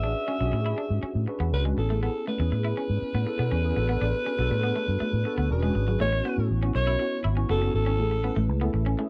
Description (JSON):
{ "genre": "pop", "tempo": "121 BPM", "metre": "4/4", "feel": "straight", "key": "A major", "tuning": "A4 = 439 Hz", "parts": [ { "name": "growling alto saxophone", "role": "melody", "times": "0.0-8.5 s", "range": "A4 to E5", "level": "-32 LUFS", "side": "equal", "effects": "none" }, { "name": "mellow tine electric piano", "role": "accompaniment", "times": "0.0-9.1 s", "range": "A3 to B4", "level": "-34 LUFS", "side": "equal", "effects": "ensemble chorus" }, { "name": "electric guitar at the edge of break-up", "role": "riff", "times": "0.0-9.1 s", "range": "F#3 to E4", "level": "-36 LUFS", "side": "equal", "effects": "subtle chorus" }, { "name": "vintage muted fingered electric bass", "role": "bass", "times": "0.0-8.9 s", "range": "E1 to B2", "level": "-28 LUFS", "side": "equal", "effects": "none" } ], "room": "little or no reverb", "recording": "dry, close 1970s-style studio recording, faint mains hum", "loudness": "-26 LUFS", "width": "mono", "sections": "0.0-6.0 A section; 6.0-9.1 B section", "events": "none", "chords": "0.0 E13; 1.8 Amaj9; 3.8 Gmaj9/A (rootless); 5.5 E13; 6.0 A6; 8.0 Amaj9", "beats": "| 0.04 0.53 1.03 1.53 | 2.03 2.52 3.02 3.52 | 4.02 4.51 5.01 5.51 | 6.01 6.50 7.00 7.50 | 7.99 8.49 8.99" }